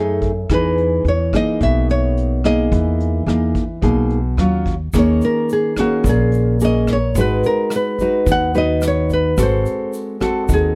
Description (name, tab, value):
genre	bossa nova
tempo	108 BPM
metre	4/4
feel	straight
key	G# minor from 4.9 s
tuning	A4 = 443 Hz
part	nylon-string guitar	accompaniment	0.0-10.8 s	F#2 to B4	-21 LUFS	equal	none
part	upright bass	bass	0.0-10.8 s	G#1 to F#2	-22 LUFS	equal	none
part	vintage brush drum kit	drums	0.2-10.6 s	hi-hat, kick drum, rim click	-27 LUFS	equal	none
part	nylon-string guitar	melody	0.5-10.8 s	F#4 to F#5	-22 LUFS	equal	none
part	egg shaker	percussion	4.9-10.8 s	none	-41 LUFS	equal	none
room	little or no reverb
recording	dark, warm production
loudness	-17 LUFS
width	mono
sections	0.0-4.9 A section; 4.9-10.8 B section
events	nylon-string guitar solo 4.9-10.8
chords	0.5 Emaj7#11; 4.4 Ebm9; 4.9 D#7sus4; 7.2 G#m7; 9.4 G#7b9